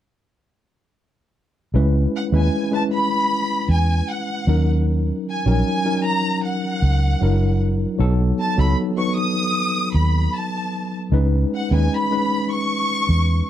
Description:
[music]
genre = lush 1970s-style soul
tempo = 77 BPM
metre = 4/4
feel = straight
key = C# minor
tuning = A4 = 440 Hz
[part]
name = tine electric piano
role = accompaniment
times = 1.7-13.5 s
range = F#3 to B4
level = -22 LUFS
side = left 1 dB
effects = overdrive, fast stereo tremolo
[part]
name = vintage muted fingered electric bass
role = bass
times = 1.7-13.4 s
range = F#1 to E2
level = -17 LUFS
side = equal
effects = none
[part]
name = warm studio violin section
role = melody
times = 2.2-13.5 s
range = F#5 to D#6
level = -24 LUFS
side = equal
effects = none
[sound]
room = studio reverb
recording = dry, close 1970s-style studio recording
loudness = -18 LUFS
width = side -11 dB against mid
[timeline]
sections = 1.7-13.5 A section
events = none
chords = 1.7 C#m7; 4.5 D#m7; 7.2 F#aug7; 8.0 B7; 11.1 C#m9

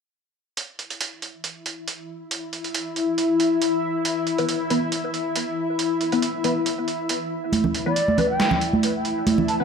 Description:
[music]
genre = deep dubstep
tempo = 138 BPM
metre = 4/4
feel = swing 53% on 16ths, half-time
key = E minor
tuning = A4 = 440 Hz
[part]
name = granular cloud pad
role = sustained chords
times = 1.9-9.6 s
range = E4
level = -24 LUFS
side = left 3 dB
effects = built-in reverb
[part]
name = trip hop sampler-style drum kit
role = drums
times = 0.6-9.6 s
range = hi-hat, snare drum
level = -27 LUFS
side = right 3 dB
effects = none
[part]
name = filtered dub chord stab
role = stabs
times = 4.4-9.6 s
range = E3 to B4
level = -27 LUFS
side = left 2 dB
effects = phaser, ensemble chorus, dub echo
[part]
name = congas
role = percussion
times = 7.5-9.5 s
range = none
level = -22 LUFS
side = right 4 dB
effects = dub echo
[part]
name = reedy ney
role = melody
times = 7.9-9.6 s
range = D5 to A5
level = -24 LUFS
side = equal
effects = low-pass filter, dub echo
[sound]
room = wet echo chamber reverb, RT60 1.3 s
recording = dark, warm production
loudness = -21 LUFS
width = side -6 dB against mid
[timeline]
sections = 0.6-7.5 A section; 7.5-9.6 B section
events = build-up 7.5-9.6; filter sweep on ney 7.5-9.6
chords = 0.6 E5

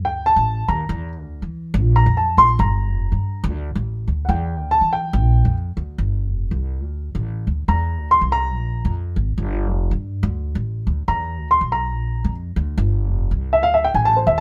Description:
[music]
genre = latin, Cuban son and guajira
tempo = 141 BPM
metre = 4/4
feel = straight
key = D minor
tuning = A4 = 440 Hz
[part]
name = upright bass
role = bass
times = 0.0-14.4 s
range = F1 to E3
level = -23 LUFS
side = equal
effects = none
[part]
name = dark grand piano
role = arpeggios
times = 0.1-14.4 s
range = C5 to C6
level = -20 LUFS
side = equal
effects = none
[sound]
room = light reverb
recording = none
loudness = -20 LUFS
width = mono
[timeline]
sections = 0.0-14.4 A section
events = grand piano solo 0.0-14.4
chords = 0.1 D5; 0.9 Dsus2; 1.7 Bb5; 2.6 Gm7; 3.4 D5; 4.3 Dsus24; 5.1 Bb6; 6.0 Fsus2; 6.8 D5; 7.7 C9; 8.5 Bb5; 9.4 Fsus2; 10.2 D5; 11.1 E5; 11.9 Bb; 12.8 Fsus2; 13.6 D5

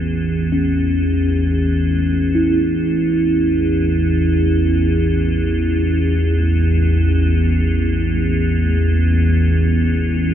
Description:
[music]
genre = world meditative, free-time meditation music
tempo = free time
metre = none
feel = none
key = A major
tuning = A4 = 436 Hz
[part]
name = icy glass pad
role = drone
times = 0.0-10.3 s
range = A1 to E2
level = -15 LUFS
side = equal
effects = chorus, built-in reverb
[part]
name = bronze singing bowl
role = texture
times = 0.5-10.3 s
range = C#4 to E4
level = -20 LUFS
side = right 1 dB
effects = none
[sound]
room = wet cathedral reverb, RT60 4.5 s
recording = none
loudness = -14 LUFS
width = side -10 dB against mid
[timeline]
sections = 0.1-10.3 A section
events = none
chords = none

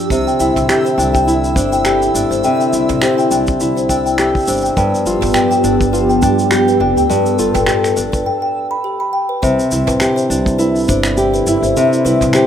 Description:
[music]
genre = folktronica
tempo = 103 BPM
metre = 4/4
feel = swing 56% on 16ths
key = C major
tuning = A4 = 440 Hz
[part]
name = warbly tape-like pad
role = sustained chords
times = 0.0-12.5 s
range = D3 to A4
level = -19 LUFS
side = equal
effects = chorus, built-in reverb
[part]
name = nylon-string guitar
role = arpeggios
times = 0.0-12.5 s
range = G2 to G4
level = -16 LUFS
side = equal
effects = digital delay
[part]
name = backwards swelling texture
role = texture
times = 0.0-8.3 s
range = E6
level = -33 LUFS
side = right 2 dB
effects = built-in reverb
[part]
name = music box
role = second line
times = 0.1-12.5 s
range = G4 to B5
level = -18 LUFS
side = left 1 dB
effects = tape echo
[part]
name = upright bass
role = bass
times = 0.1-12.3 s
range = F1 to G2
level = -22 LUFS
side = equal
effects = none
[part]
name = jazz brush drum kit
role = drums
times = 0.1-12.5 s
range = finger snaps, shaker, toms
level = -23 LUFS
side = equal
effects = none
[part]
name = kick drum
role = drums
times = 0.1-12.3 s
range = none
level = -20 LUFS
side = equal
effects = none
[sound]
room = light reverb, small room ambience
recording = rough home demo mix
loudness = -12 LUFS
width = side -9 dB against mid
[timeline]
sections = 0.0-9.4 A section; 9.4-12.5 B section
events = break 8.3-9.4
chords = 0.1 Cadd9; 4.8 G7; 9.4 Cadd9

